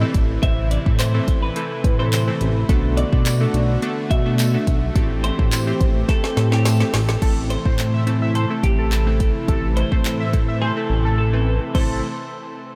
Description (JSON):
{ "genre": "dance-pop", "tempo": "106 BPM", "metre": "4/4", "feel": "straight", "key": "A dorian", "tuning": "A4 = 440 Hz", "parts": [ { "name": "twelve-string electric guitar", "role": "melody", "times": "0.0-12.0 s", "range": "G4 to E5", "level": "-31 LUFS", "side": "equal", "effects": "subtle chorus, tape echo" }, { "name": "glassy digital keys", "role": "accompaniment", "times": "0.0-12.0 s", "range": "E3 to C5", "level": "-29 LUFS", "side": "equal", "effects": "chorus, sidechain pumping" }, { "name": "soft supersaw", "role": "sustained chords", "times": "0.0-12.0 s", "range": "C3 to G4", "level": "-31 LUFS", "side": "equal", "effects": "sidechain pumping" }, { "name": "chorused synth bass", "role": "bass", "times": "0.0-12.0 s", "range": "A1 to B2", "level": "-23 LUFS", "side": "equal", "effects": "sidechain pumping" }, { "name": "deep house drum kit", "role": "drums", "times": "0.1-11.9 s", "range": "crash cymbal, handclaps, hi-hat, kick drum, snare drum", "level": "-23 LUFS", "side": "equal", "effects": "none" }, { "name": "tambourine", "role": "percussion", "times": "1.0-6.8 s", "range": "none", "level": "-38 LUFS", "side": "equal", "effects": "none" }, { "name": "octave-doubled lead", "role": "melody", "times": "7.2-12.0 s", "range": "A4 to E5", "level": "-32 LUFS", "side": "equal", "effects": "chorus, sidechain pumping, tape echo" } ], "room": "light reverb", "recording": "none", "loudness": "-19 LUFS", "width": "mono", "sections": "0.0-7.2 A section; 7.2-11.7 B section; 11.7-12.8 C section", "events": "drum fill 6.1-7.2; silent gap 10.6-11.7", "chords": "0.0 Am; 2.7 Bm7; 5.0 Am7; 7.2 Am", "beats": "| 0.43 0.99 1.56 2.13 | 2.69 3.26 3.82 4.39 | 4.96 5.52 6.09 6.65 | 7.22 7.79 8.35 8.92 | 9.48 10.05 10.62 11.18 | 11.75" }